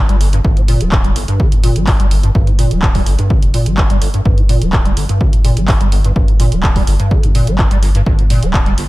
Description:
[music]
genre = acid house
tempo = 126 BPM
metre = 4/4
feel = straight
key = G minor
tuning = A4 = 440 Hz
[part]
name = saturated sub bass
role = bass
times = 0.0-8.9 s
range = D1 to G1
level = -16 LUFS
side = equal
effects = sidechain pumping
[part]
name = liquid acid bass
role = riff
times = 0.1-8.8 s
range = G1 to G3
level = -17 LUFS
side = equal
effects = overdrive, ensemble chorus, tape echo
[part]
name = punchy analog drum machine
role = drums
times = 0.1-8.9 s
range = handclaps, hi-hat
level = -22 LUFS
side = equal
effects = none
[part]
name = electronic kick drum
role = drums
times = 0.4-8.6 s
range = none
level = -14 LUFS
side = equal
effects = none
[sound]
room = little or no reverb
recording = none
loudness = -10 LUFS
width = side -19 dB against mid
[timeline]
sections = 0.0-8.9 A section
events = filter sweep on acid bass 0.0-8.9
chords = 0.0 Gm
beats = | 0.45 0.92 1.40 1.87 | 2.35 2.83 3.30 3.78 | 4.25 4.73 5.21 5.68 | 6.16 6.63 7.11 7.59 | 8.06 8.54

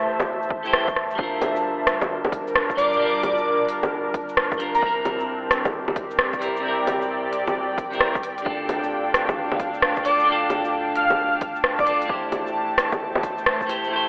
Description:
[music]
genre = future garage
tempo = 132 BPM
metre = 4/4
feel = swing 64% on 16ths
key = G dorian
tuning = A4 = 440 Hz
[part]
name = clean electric guitar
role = accompaniment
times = 0.0-14.1 s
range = C3 to C5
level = -31 LUFS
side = equal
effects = sidechain pumping, analog delay
[part]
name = airy breathy pad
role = sustained chords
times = 0.0-14.1 s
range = G3 to A5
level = -29 LUFS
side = equal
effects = chorus, sidechain pumping
[part]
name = warm sub bass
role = bass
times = 0.0-14.1 s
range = G1 to D2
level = -49 LUFS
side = equal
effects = sidechain pumping
[part]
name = electronic kick drum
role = drums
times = 0.2-13.7 s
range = none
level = -32 LUFS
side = equal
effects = overdrive
[part]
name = organic electronic drum kit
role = drums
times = 0.2-13.9 s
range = bongos, hi-hat, rim click, shaker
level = -26 LUFS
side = equal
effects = overdrive
[part]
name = airy dreamy lead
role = melody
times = 2.8-4.9, 10.1-12.0 s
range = Bb4 to F5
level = -25 LUFS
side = equal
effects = chorus, analog delay
[sound]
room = moderate lush hall reverb, RT60 1.9 s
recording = dry, gritty hardware recording, vinyl crackle, telephone sound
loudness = -23 LUFS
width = mono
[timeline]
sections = 0.0-1.2 A section; 1.2-14.1 B section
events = filter sweep on clean electric guitar 0.0-1.2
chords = 0.0 Am7; 1.2 Gm7; 4.8 C7; 8.5 Dm; 12.1 Am7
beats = 0.28 0.73 | 1.19 1.64 2.10 2.55 | 3.01 3.46 3.92 4.37 | 4.83 5.28 5.73 6.19 | 6.64 7.10 7.55 8.01 | 8.46 8.92 9.37 9.82 | 10.28 10.73 11.19 11.64 | 12.10 12.55 13.01 13.46 | 13.92

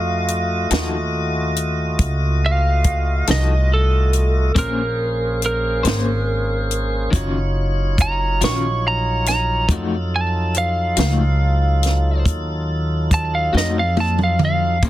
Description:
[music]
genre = slow blues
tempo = 47 BPM (dotted quarters)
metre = 12/8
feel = straight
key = unclear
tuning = A4 = 439 Hz
[part]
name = lightly driven lead guitar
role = melody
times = 0.0-14.8 s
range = A4 to Db6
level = -22 LUFS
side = right 2 dB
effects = slapback echo
[part]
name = tonewheel organ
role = sustained chords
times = 0.0-14.9 s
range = Gb3 to Eb5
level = -26 LUFS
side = equal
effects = slow rotary speaker, overdrive
[part]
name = upright bass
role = bass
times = 0.0-14.9 s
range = Gb1 to Bb2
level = -19 LUFS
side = equal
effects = none
[part]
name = compact cocktail drum kit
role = drums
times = 0.3-14.9 s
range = hi-hat, kick drum, snare drum, toms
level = -19 LUFS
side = equal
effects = none
[part]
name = electric guitar through a small old amp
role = accompaniment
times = 0.7-14.9 s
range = Eb3 to C5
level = -25 LUFS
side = left 4 dB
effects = tremolo
[sound]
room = small room ambience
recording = dense, heavily limited modern master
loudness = -16 LUFS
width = side -14 dB against mid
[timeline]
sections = 0.0-14.8 A section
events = lead electric guitar solo 0.0-14.8; drum fill 13.5-14.8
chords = 0.0 F7b9; 4.6 Bbm9; 7.1 Ebm9; 9.7 F7b9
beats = 0.71 1.99 3.28 | 4.56 5.84 7.13 8.41 | 9.70 10.98 12.26 13.55 | 14.83

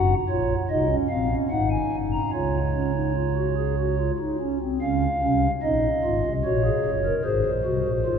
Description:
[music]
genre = classical, baroque-style 3-part fugue for pipe organ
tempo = 74 BPM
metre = 3/4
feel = straight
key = Db major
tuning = A4 = 441 Hz
[part]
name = pipe organ, stopped flute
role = solo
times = 0.0-8.2 s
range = Gb1 to Bb5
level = -21 LUFS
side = equal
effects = none
[sound]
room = wet cathedral reverb, RT60 5.5 s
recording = none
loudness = -21 LUFS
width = side -7 dB against mid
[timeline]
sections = 0.0-4.8 A section; 4.8-8.2 B section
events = none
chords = 0.0 Ebm/Gb; 1.5 Ab5; 2.3 Db; 6.4 Gb/Bb; 7.2 Ab7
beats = 0.69 1.51 | 2.33 3.16 3.99 | 4.81 5.62 6.44 | 7.25 8.05

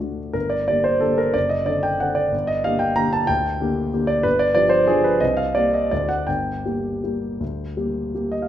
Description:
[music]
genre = classical, piano waltz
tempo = 152-199 BPM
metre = 3/4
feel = rubato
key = G minor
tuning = A4 = 441 Hz
[part]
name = warm concert grand piano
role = solo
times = 0.0-8.5 s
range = F#1 to Bb5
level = -19 LUFS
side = equal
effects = none
[sound]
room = wet large studio reverb, RT60 1.3 s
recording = none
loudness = -18 LUFS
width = side -11 dB against mid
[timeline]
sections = 0.0-8.5 A section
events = none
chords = 0.3 Gm; 1.4 D7/F#; 2.3 Gm; 4.3 G5; 5.2 C5; 5.9 D7; 6.3 Gm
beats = | 0.35 0.69 1.03 | 1.36 1.68 2.02 | 2.33 2.65 2.97 | 3.29 3.61 3.94 | 4.25 4.56 4.89 | 5.22 5.55 5.91 | 6.27 6.65 7.04 | 7.41 7.78 8.16

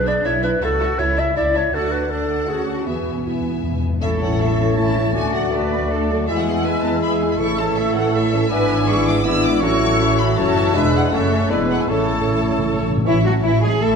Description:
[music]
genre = quick classical-period movement for symphony orchestra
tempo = 160 BPM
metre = 3/4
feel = straight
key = A major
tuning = A4 = 445 Hz
[part]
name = mellow clarinet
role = second line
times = 0.0-14.0 s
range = C#4 to E5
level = -23 LUFS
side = left 2 dB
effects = none
[part]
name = rich studio cello section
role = bass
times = 0.0-14.0 s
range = B3 to B4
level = -26 LUFS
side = right 2 dB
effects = none
[part]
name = warm studio double bass section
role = bass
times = 0.0-14.0 s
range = E1 to E2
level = -23 LUFS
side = right 3 dB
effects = none
[part]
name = warm studio violin section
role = melody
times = 0.1-14.0 s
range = D5 to E6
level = -27 LUFS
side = left 3 dB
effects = none
[part]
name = rich studio violin section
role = second line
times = 0.1-14.0 s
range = C#4 to G#5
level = -31 LUFS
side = left 5 dB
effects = none
[part]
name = warm studio viola section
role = accompaniment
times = 0.1-14.0 s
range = E3 to F#4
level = -27 LUFS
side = equal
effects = none
[part]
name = timpani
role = percussion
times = 2.9-4.6, 7.4-7.9, 11.9-13.6 s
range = E2 to A2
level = -25 LUFS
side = left 2 dB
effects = none
[part]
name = mellow large flute ensemble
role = second line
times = 4.0-14.0 s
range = E5 to A6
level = -30 LUFS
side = left 2 dB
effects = none
[part]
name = warm cor anglais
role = second line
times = 4.0-13.2 s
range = B4 to E5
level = -30 LUFS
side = right 2 dB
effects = none
[part]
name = mellow bassoon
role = accompaniment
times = 4.0-13.2 s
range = E3 to B3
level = -27 LUFS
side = equal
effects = none
[part]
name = mellow French horn section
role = sustained chords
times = 4.0-14.0 s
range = E3 to A4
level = -23 LUFS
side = left 2 dB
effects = none
[sound]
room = wet concert hall reverb, RT60 2.0 s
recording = dark, warm production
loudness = -16 LUFS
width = side -6 dB against mid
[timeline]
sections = 0.0-4.0 A section; 4.0-13.1 B section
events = timpani fill 2.9-4.0, 11.9-13.1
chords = 0.0 E7(no3)/B; 0.6 A/C#; 1.7 D; 2.9 E; 4.0 A; 5.2 D; 6.3 E; 7.4 A; 8.5 E7/G#; 9.6 A; 10.8 E7; 11.1 F#m; 11.5 E7; 11.9 A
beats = 0.24 | 0.61 0.98 1.35 | 1.73 2.10 2.48 | 2.86 3.25 3.64 | 4.02 4.40 4.78 | 5.16 5.53 5.91 | 6.28 6.65 7.03 | 7.40 7.77 8.14 | 8.51 8.88 9.25 | 9.63 10.00 10.38 | 10.75 11.13 11.51 | 11.90 12.28 12.67 | 13.06 13.44 13.81

